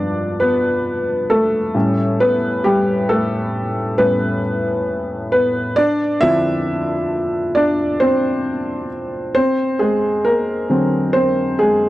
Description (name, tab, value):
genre	R&B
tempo	67 BPM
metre	4/4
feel	swing 54% on 16ths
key	D dorian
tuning	A4 = 442 Hz
part	warm upright piano	solo	0.0-11.9 s	G2 to E5	-16 LUFS	equal	none
room	little or no reverb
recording	dry, close 1970s-style studio recording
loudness	-16 LUFS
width	side -16 dB against mid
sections	0.0-11.9 A section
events	upright piano solo 0.0-11.9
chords	0.0 G9; 1.7 A9; 5.8 Dm9; 9.4 Daug7